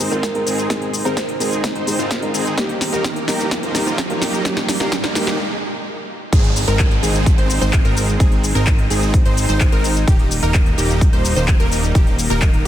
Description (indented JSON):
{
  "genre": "EDM, festival progressive house",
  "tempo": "128 BPM",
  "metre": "4/4",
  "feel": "straight",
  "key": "Ab major",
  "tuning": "A4 = 438 Hz",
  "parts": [
    { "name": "felt-muted upright piano", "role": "accompaniment", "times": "0.0-5.4 s", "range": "G3 to Bb4", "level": "-25 LUFS", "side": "left 1 dB", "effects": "sidechain pumping, dub echo" },
    { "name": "lush unison pad", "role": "sustained chords", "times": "0.0-12.7 s", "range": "G3 to C6", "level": "-29 LUFS", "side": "right 1 dB", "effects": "chorus, sidechain pumping" },
    { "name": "supersaw chords", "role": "riff", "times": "0.0-12.7 s", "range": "Bb3 to C5", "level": "-24 LUFS", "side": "right 1 dB", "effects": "sidechain pumping, low-pass filter, dub echo" },
    { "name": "fat analog bass", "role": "bass", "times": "0.0-12.7 s", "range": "Eb1 to Ab1", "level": "-22 LUFS", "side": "equal", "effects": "sidechain pumping, high-pass filter" },
    { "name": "big-room dance drum kit", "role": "drums", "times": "0.0-12.7 s", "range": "cabasa, crash cymbal, handclaps, hi-hat, snare drum", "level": "-23 LUFS", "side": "left 1 dB", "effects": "soft clipping on snare" },
    { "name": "riser and downlifter", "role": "sound effects", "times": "0.9-10.1 s", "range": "none", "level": "-28 LUFS", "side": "right 2 dB", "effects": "none" },
    { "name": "buzzing kalimba", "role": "melody", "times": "0.1-1.4 s", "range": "Bb4 to C5", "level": "-27 LUFS", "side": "right 2 dB", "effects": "dub echo" },
    { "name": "electronic kick drum", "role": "drums", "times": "0.2-12.5 s", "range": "none", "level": "-15 LUFS", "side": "equal", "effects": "high-pass filter on kick, high-pass filter on room" },
    { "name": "wide unison pluck", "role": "arpeggios", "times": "6.3-12.7 s", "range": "G4 to C5", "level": "-26 LUFS", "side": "equal", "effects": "sidechain pumping, dub echo" }
  ],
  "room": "little or no reverb",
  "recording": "dense, heavily limited modern master",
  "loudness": "-15 LUFS",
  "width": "side -12 dB against mid",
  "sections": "0.0-6.3 A section; 6.3-12.7 B section",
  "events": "build-up 0.0-6.3; drum fill 0.0-5.4; riser 0.9-5.4; break 5.4-6.3; drop 6.3-12.7",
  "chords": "0.0 Ab; 2.6 Eb; 6.3 Ab; 10.1 Eb"
}